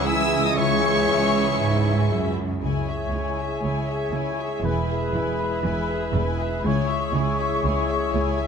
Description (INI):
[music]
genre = cinematic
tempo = 119 BPM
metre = 4/4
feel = straight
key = C# minor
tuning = A4 = 440 Hz
[part]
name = warm symphonic violin section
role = melody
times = 0.0-8.5 s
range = E5 to E6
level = -30 LUFS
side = left 3 dB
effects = none
[part]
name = flute section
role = second line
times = 0.0-8.4 s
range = G#5 to C#6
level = -33 LUFS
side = left 4 dB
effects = none
[part]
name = mellow clarinet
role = second line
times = 0.0-8.5 s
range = G#4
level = -33 LUFS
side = left 2 dB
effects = none
[part]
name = warm oboe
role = second line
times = 0.0-8.5 s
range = E5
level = -34 LUFS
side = right 2 dB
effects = none
[part]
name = warm symphonic violin section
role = second line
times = 0.0-8.5 s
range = G#4 to G#5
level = -35 LUFS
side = left 3 dB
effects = none
[part]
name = rich studio viola section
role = accompaniment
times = 0.0-8.5 s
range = G#3 to G#4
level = -33 LUFS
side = right 1 dB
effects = none
[part]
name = mellow French horn section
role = sustained chords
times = 0.0-8.5 s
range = E3 to G#4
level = -31 LUFS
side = left 5 dB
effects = none
[part]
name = concert harp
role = arpeggios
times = 0.0-8.5 s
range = C#3 to G#5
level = -33 LUFS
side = left 12 dB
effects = none
[part]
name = clear trumpet section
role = stabs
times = 0.0-8.5 s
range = B4 to E5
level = -28 LUFS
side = left 2 dB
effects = none
[part]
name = rich symphonic cello section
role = bass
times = 0.0-8.5 s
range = C#2 to G#2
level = -27 LUFS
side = right 3 dB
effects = none
[part]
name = rich symphonic double bass section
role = bass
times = 0.0-8.5 s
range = E1 to C#2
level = -28 LUFS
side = right 4 dB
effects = none
[sound]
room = moderate concert hall reverb, RT60 2.2 s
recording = none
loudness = -20 LUFS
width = side -6 dB against mid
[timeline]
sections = 0.0-2.6 A section; 2.6-8.5 B section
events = none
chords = 0.0 C#m; 4.7 E; 6.7 C#m